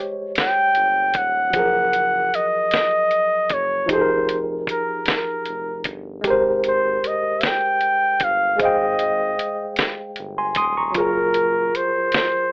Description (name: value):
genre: slow six-eight R&B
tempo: 51 BPM (dotted quarters)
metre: 6/8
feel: straight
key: Ab major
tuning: A4 = 440 Hz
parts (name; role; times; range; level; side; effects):
- warm flugelhorn; melody; 0.0-12.5 s; Bb4 to G5; -19 LUFS; equal; none
- tine electric piano; accompaniment; 0.0-12.5 s; F3 to Eb6; -23 LUFS; equal; overdrive, fast stereo tremolo
- smooth synth bass; bass; 0.0-11.8 s; Eb1 to Db2; -35 LUFS; equal; none
- dusty soul sampler-style drum kit; drums; 0.4-12.3 s; hi-hat, kick drum, snare drum; -22 LUFS; equal; none
room: light reverb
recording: rough home demo mix, telephone sound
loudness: -17 LUFS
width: side -28 dB against mid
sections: 0.0-12.5 A section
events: none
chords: 0.0 Dbsus2; 1.5 Gbmaj9; 3.9 Fm11; 6.2 Abmaj9; 8.6 Abmaj13; 11.0 Gbmaj9